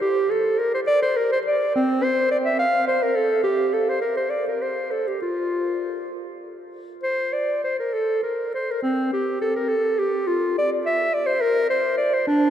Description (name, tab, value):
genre	classical, baroque-style fantasia for unaccompanied clarinet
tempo	64-72 BPM (dotted quarters)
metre	6/8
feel	rubato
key	unclear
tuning	A4 = 439 Hz
part	warm clarinet	solo	0.0-12.5 s	C4 to F5	-20 LUFS	equal	none
room	wet cathedral reverb, RT60 6.5 s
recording	in a vast, echoing space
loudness	-20 LUFS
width	side -10 dB against mid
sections	0.0-7.0 A section; 7.0-12.5 B section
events	none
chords	none